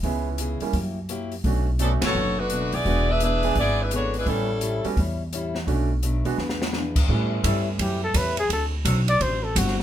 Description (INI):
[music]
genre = jazz, big band swing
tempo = 170 BPM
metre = 4/4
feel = swing 64% on 8ths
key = A mixolydian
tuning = A4 = 440 Hz
[part]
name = clear baby grand piano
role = accompaniment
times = 0.0-8.1 s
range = G3 to G#4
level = -30 LUFS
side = right 6 dB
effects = none
[part]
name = picked acoustic archtop guitar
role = accompaniment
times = 0.0-9.8 s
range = A2 to G#4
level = -32 LUFS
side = left 3 dB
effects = none
[part]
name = upright bass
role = bass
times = 0.0-9.8 s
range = E1 to B2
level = -25 LUFS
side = equal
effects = none
[part]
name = open jazz drum kit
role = drums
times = 0.0-9.8 s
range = crash cymbal, hi-hat, kick drum, ride cymbal, snare drum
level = -28 LUFS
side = equal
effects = none
[part]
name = warm saxophone section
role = melody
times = 1.8-4.9 s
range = F#3 to E5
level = -24 LUFS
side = equal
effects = none
[part]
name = clear saxophone section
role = sustained chords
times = 7.4-9.0 s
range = F#3 to A4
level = -33 LUFS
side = right 1 dB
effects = none
[part]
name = breathy trumpet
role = melody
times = 7.8-9.8 s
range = F#4 to D5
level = -24 LUFS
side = left 1 dB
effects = none
[sound]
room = moderate club reverb, RT60 0.9 s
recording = minimal, uncompressed stereo recording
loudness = -21 LUFS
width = side -11 dB against mid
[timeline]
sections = 0.0-7.1 A section; 7.1-9.8 B section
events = band accent 2.0; drum fill 6.4-6.7; trumpet solo 7.1-9.8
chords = 0.0 C#m7; 0.7 F#7b9; 1.4 Bm7; 2.9 E7; 4.3 A7; 5.7 Bm7; 6.4 E7; 7.1 A7; 8.5 D7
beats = | 0.03 0.38 0.73 1.09 | 1.44 1.79 2.15 2.50 | 2.85 3.20 3.56 3.91 | 4.26 4.62 4.97 5.32 | 5.67 6.03 6.38 6.74 | 7.09 7.44 7.79 8.15 | 8.50 8.85 9.21 9.56